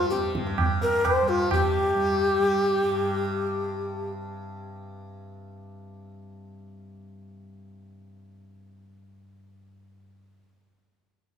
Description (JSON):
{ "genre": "indian classical, Hindustani", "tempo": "130 BPM", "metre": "4/4", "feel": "straight", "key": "unclear", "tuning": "A4 = 440 Hz", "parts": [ { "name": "mellow bansuri", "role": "melody", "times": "0.0-4.1 s", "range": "F4+20c to C5", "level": "-24 LUFS", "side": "left 1 dB", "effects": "none" }, { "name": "tanpura", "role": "drone", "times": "0.0-10.0 s", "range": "G2 to G3", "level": "-35 LUFS", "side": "left 1 dB", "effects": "none" }, { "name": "tabla", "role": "percussion", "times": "0.1-1.7 s", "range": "none", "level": "-27 LUFS", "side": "right 2 dB", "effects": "none" } ], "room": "wet recital hall reverb, RT60 1.7 s", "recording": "minimal, uncompressed stereo recording", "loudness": "-22 LUFS", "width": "side -8 dB against mid", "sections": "0.0-1.5 A section; 1.5-3.4 B section", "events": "none", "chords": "none", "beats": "0.12 0.59 1.05 | 1.51 1.98 2.44 2.90" }